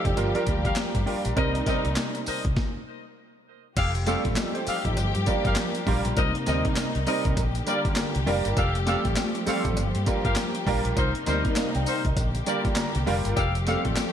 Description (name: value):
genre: R&B, new jack swing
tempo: 100 BPM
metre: 4/4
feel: swing 60% on 16ths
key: unclear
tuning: A4 = 442 Hz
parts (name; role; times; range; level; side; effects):
- warm grand piano; accompaniment; 0.0-14.1 s; G3 to Bb5; -29 LUFS; right 3 dB; ensemble chorus
- dark studio string section; sustained chords; 0.0-14.1 s; C3 to G4; -31 LUFS; left 2 dB; none
- mellow horn section; stabs; 0.0-13.8 s; Eb4 to F5; -31 LUFS; left 3 dB; ping-pong delay
- vintage muted fingered electric bass; bass; 0.1-13.9 s; F1 to G2; -28 LUFS; equal; none
- breakbeat sampler-style drum kit; drums; 0.1-14.1 s; crash cymbal, handclaps, hi-hat, kick drum, snare drum, tambourine; -28 LUFS; equal; overdrive, gated reverb
- cowbell; percussion; 0.2-14.1 s; none; -43 LUFS; left 3 dB; none
room: light reverb, small room ambience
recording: bright 1980s-style digital production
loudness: -23 LUFS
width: side -9 dB against mid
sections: 0.0-3.8 A section; 3.8-14.1 B section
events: stop 2.6-3.8; grand piano fill 12.5-13.4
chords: 0.2 Gm7; 1.4 Cm7; 2.6 N.C.; 3.8 Fadd9; 5.0 Gm7; 6.2 Cm7; 7.4 Bb6; 8.6 Fadd9; 9.8 Gm7; 11.0 Cm7; 12.2 Bb6; 13.4 Fadd9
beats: 0.17 0.77 | 1.37 1.97 2.57 3.17 | 3.77 4.37 4.97 5.57 | 6.17 6.77 7.37 7.97 | 8.57 9.17 9.77 10.37 | 10.97 11.57 12.17 12.77 | 13.37 13.97